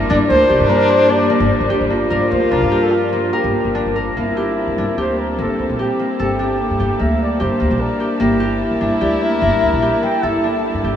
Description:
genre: contemporary instrumental, chamber music in an uneven meter.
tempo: 148 BPM.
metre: 5/4.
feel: straight.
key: G dorian.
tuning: A4 = 441 Hz.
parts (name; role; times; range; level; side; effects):
clear French horn; second line; 0.0-11.0 s; Bb3 to F4; -20 LUFS; left 1 dB; none.
rich studio string section; sustained chords; 0.0-11.0 s; F3 to A5; -26 LUFS; right 1 dB; none.
concert harp; arpeggios; 0.0-11.0 s; Bb3 to Bb4; -20 LUFS; left 1 dB; none.
upright bass; bass; 0.0-10.9 s; G1 to G2; -22 LUFS; equal; none.
mellow flugelhorn; melody; 0.1-11.0 s; E4 to G5; -20 LUFS; equal; none.
room: wet huge ambient reverb, RT60 8.4 s.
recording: in a vast, echoing space.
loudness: -14 LUFS.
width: side -9 dB against mid.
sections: 0.0-4.2 A section; 4.2-11.0 B section.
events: none.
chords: 0.0 Gm7; 4.2 Gm69.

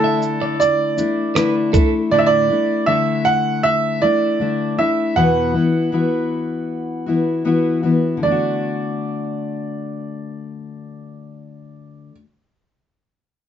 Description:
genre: acoustic pop.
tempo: 79 BPM.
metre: 4/4.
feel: swing 55% on 16ths.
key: D major.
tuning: A4 = 439 Hz.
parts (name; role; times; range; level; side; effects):
bright upright piano; melody; 0.0-12.1 s; A4 to F#5; -19 LUFS; right 5 dB; none.
fingerpicked steel-string acoustic guitar; accompaniment; 0.0-12.2 s; E2 to F#4; -20 LUFS; left 3 dB; none.
reed electric piano; accompaniment; 0.0-1.8 s; A3 to D5; -30 LUFS; left 6 dB; none.
twelve-string electric guitar; arpeggios; 0.0-1.9 s; A4 to E5; -24 LUFS; right 3 dB; slapback echo.
dusty soul sampler-style drum kit; drums; 0.2-1.9 s; kick drum, rim click, shaker; -18 LUFS; right 1 dB; none.
room: moderate small room reverb, RT60 0.5 s.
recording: nothing above 7.6 kHz.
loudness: -16 LUFS.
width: side -9 dB against mid.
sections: 0.0-8.2 A section; 8.2-11.3 B section.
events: none.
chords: 0.0 Dsus2; 1.7 Asus4; 5.2 Esus2; 8.2 D.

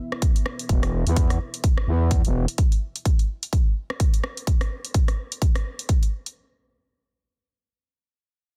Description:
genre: bass house.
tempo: 127 BPM.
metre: 4/4.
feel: swing 58% on 16ths.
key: unclear.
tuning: A4 = 441 Hz.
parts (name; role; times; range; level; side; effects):
dark analog pad; sustained chords; 0.0-2.5 s; B3 to E5; -43 LUFS; equal; none.
big-room dance drum kit; drums; 0.1-6.3 s; hi-hat, rim click; -34 LUFS; equal; none.
electronic kick drum; drums; 0.2-6.0 s; none; -22 LUFS; equal; none.
growling FM bass; bass; 0.7-2.5 s; E1 to E2; -24 LUFS; equal; tube saturation, sidechain pumping.
room: digital ambience.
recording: dense, heavily limited modern master.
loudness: -23 LUFS.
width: mono.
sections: 0.0-6.4 A section.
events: filter sweep on FM bass 0.0-2.6.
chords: 0.0 E5.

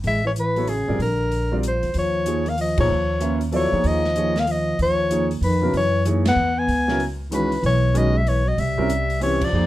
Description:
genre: modal jazz.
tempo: 190 BPM.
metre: 3/4.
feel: swing 64% on 8ths.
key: unclear.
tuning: A4 = 441 Hz.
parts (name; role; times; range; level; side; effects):
upright bass; bass; 0.0-9.7 s; A1 to Bb2; -23 LUFS; right 1 dB; none.
open jazz drum kit; drums; 0.0-9.5 s; crash cymbal, hi-hat, kick drum, ride cymbal, snare drum; -32 LUFS; equal; none.
mellow soprano saxophone; melody; 0.1-9.7 s; Ab4 to Ab5; -23 LUFS; left 1 dB; none.
mellow trombone; second line; 0.1-9.7 s; Db3 to Cb4; -27 LUFS; left 2 dB; none.
warm concert grand piano; accompaniment; 0.6-9.7 s; Db3 to Fb5; -25 LUFS; right 1 dB; none.
room: light reverb.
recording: none.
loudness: -18 LUFS.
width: side -15 dB against mid.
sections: 0.0-1.9 A section; 1.9-9.5 B section.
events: band accent 2.7, 6.2, 9.4.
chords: 0.0 Gbm9 (rootless); 1.0 Bb; 1.9 Eb9sus4; 5.7 Gb9sus4; 8.6 C(b9).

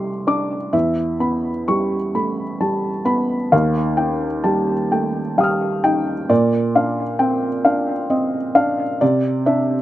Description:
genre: neoclassical minimalist piano.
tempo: 44 BPM (dotted quarters).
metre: 6/8.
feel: rubato.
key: unclear.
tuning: A4 = 440 Hz.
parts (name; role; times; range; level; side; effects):
felt-muted upright piano; solo; 0.0-9.8 s; C2 to F6; -17 LUFS; equal; slapback echo.
room: little or no reverb.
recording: recorded outdoors, with no room sound.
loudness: -17 LUFS.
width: side -14 dB against mid.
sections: 0.0-9.8 A section.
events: none.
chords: 0.0 Cadd9; 0.7 Em; 3.5 Ebadd9; 6.3 Bbadd9; 9.0 Cadd9.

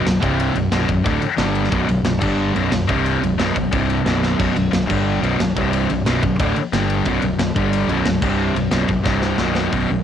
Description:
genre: heavy metal.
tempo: 180 BPM.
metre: 4/4.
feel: straight.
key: B minor.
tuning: A4 = 441 Hz.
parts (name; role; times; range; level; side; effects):
heavy high-gain guitar; riff; 0.0-10.0 s; B1 to G3; -20 LUFS; left 8 dB; distortion, cassette tape.
sludgy distorted guitar; riff; 0.0-10.0 s; B1 to G3; -22 LUFS; right 8 dB; overdrive, cassette tape.
growling fingered electric bass; bass; 0.0-10.0 s; B0 to G1; -24 LUFS; equal; overdrive.
tight metal drum kit; drums; 0.1-9.8 s; crash cymbal, hi-hat, kick drum, ride cymbal, snare drum, splash cymbal; -24 LUFS; equal; cassette tape.
room: light reverb.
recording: home recording on cassette.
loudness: -16 LUFS.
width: side -9 dB against mid.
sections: 0.0-9.7 A section.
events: drum fill 4.2, 9.1-9.7.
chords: 0.2 C5; 0.6 Bm; 1.4 G5; 1.7 B5; 2.2 G5; 2.6 B5; 2.9 C5; 3.2 B5; 3.7 C5; 4.1 B5; 4.9 G5; 5.2 B5; 5.6 C5; 5.9 Bm; 6.7 G5; 7.1 B5; 7.6 G5; 7.9 B5; 8.2 C5; 8.6 B5; 9.1 C5; 9.4 B5.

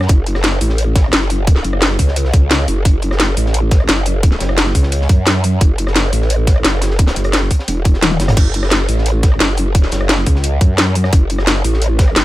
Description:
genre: dark technical drum and bass.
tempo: 174 BPM.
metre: 4/4.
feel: straight.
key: F# minor.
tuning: A4 = 441 Hz.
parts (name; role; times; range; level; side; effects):
growl bass; bass; 0.0-12.2 s; E1 to F#2; -16 LUFS; equal; chorus, overdrive, sidechain pumping.
crunchy breakbeat drum kit; drums; 0.0-12.2 s; hi-hat, snare drum; -28 LUFS; equal; none.
drum and bass drum kit; drums; 0.0-12.2 s; crash cymbal, hi-hat, rim click, snare drum, toms; -17 LUFS; equal; none.
electronic kick drum; drums; 0.1-12.1 s; none; -11 LUFS; equal; none.
room: little or no reverb.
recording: none.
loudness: -12 LUFS.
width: side -16 dB against mid.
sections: 0.0-12.2 A section.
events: drum fill 8.0-8.4.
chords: none.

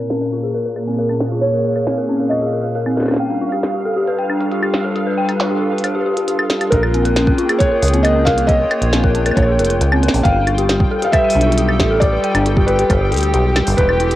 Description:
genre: IDM.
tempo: 136 BPM.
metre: 4/4.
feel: straight.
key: unclear.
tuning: A4 = 440 Hz.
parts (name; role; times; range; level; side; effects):
felt-muted upright piano; melody; 0.0-2.9, 6.7-14.2 s; Bb4 to F5; -20 LUFS; right 1 dB; vintage 12-bit sampler grit, tape echo, plate reverb.
hollow soft pad; sustained chords; 0.0-14.2 s; Bb2 to G5; -21 LUFS; equal; chorus, plate reverb.
dark detuned synth bell; arpeggios; 0.0-14.2 s; C4 to G5; -20 LUFS; left 2 dB; chorus, phaser, vintage 12-bit sampler grit, low-pass filter, tape echo, plate reverb.
pulsing gated texture; texture; 0.1-14.2 s; F5 to G5; -28 LUFS; right 1 dB; chorus, built-in reverb, plate reverb.
glitchy drum kit; drums; 0.1-14.2 s; claves, hi-hat, snare drum; -22 LUFS; equal; none.
deep acid bass; bass; 6.7-14.2 s; E1 to D2; -17 LUFS; equal; tube saturation.
electronic kick drum; drums; 6.7-13.9 s; none; -18 LUFS; equal; none.
room: moderate booth ambience, RT60 0.2 s.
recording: home recording on cassette, low-pass filter.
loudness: -14 LUFS.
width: side -14 dB against mid.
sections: 0.0-6.7 A section; 6.7-14.2 B section.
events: filter sweep on synth bell 0.0-6.7; filter sweep 0.0-6.7.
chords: 0.0 Bbm7; 3.2 G7; 6.7 Bbm7; 10.2 G7.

